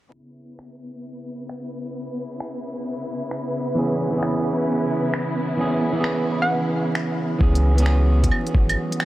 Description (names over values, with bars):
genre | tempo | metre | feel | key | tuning
future garage | 132 BPM | 4/4 | swing 65% on 16ths | C# minor | A4 = 439 Hz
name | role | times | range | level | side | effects
rich studio string section | sustained chords | 0.1-7.4 s | C#3 to E4 | -30 LUFS | left 1 dB | sidechain pumping
flickering grainy texture | texture | 0.7-9.1 s | F#3 to B4 | -31 LUFS | left 1 dB | built-in reverb
organic electronic drum kit | drums | 0.6-9.1 s | claves, finger snaps, hi-hat | -29 LUFS | right 1 dB | overdrive
electric guitar at the edge of break-up | accompaniment | 3.7-9.1 s | E3 to G#4 | -22 LUFS | right 2 dB | spring reverb, sidechain pumping, tape echo
hollow square pluck | melody | 6.4-6.7 s | F#5 | -27 LUFS | right 1 dB | chorus, cassette tape, tape echo
warm sub bass | bass | 7.4-8.8 s | G#1 to C#2 | -18 LUFS | equal | sidechain pumping
electronic kick drum | drums | 7.4-8.7 s | none | -19 LUFS | equal | none
room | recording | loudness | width
light reverb, digital ambience | vinyl crackle, low-pass filter | -20 LUFS | side -16 dB against mid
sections
0.1-7.4 A section; 7.4-9.1 B section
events
fade-in on string section 0.1-7.4; filter sweep 0.1-7.4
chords
0.1 C#m7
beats
| 0.13 0.59 1.04 1.50 | 1.95 2.41 2.86 3.31 | 3.77 4.22 4.68 5.13 | 5.59 6.04 6.50 6.95 | 7.41 7.86 8.31 8.77